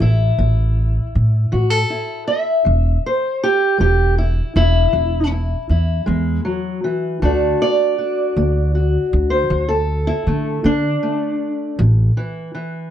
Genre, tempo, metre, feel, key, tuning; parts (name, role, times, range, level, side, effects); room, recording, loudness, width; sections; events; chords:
acoustic country blues, solo or duo; 53 BPM (dotted quarters); 12/8; straight; A4 = 440 Hz
fingerpicked steel-string acoustic guitar; melody; 0.0-12.9 s; A2 to E5; -18 LUFS; equal
upright bass; bass; 0.0-12.1 s; E1 to D3; -17 LUFS; equal
studio reverb; dry, close 1970s-style studio recording; -15 LUFS; side -10 dB against mid
0.0-12.9 A section
0.0 A5; 2.7 E; 7.2 D; 11.8 A5